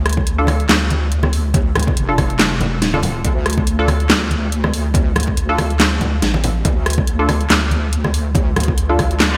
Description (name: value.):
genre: deep dubstep.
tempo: 141 BPM.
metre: 4/4.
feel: swing 56% on 16ths, half-time.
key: D minor.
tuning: A4 = 437 Hz.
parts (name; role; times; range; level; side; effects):
wobble bass; bass; 0.0-9.4 s; F1 to D2; -21 LUFS; equal; chorus.
dubstep drum kit; drums; 0.1-9.3 s; handclaps, hi-hat, rim click, snare drum; -21 LUFS; equal; gated reverb.
electronic kick drum; drums; 0.2-9.1 s; none; -21 LUFS; equal; none.
congas; percussion; 0.2-9.1 s; none; -26 LUFS; equal; dub echo.
filtered dub chord stab; stabs; 0.4-9.0 s; D4 to A4; -26 LUFS; equal; analog chorus, dub echo.
reverse cymbal; sound effects; 9.3-9.4 s; none; -22 LUFS; equal; none.
room: light reverb.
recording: bright 1980s-style digital production.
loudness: -17 LUFS.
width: mono.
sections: 0.0-9.4 A section.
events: reverse cymbal 9.3.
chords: 0.0 Dm.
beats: 0.27 0.69 1.12 | 1.54 1.97 2.39 2.82 | 3.25 3.67 4.10 4.52 | 4.95 5.37 5.80 6.22 | 6.65 7.08 7.50 7.93 | 8.35 8.78 9.20.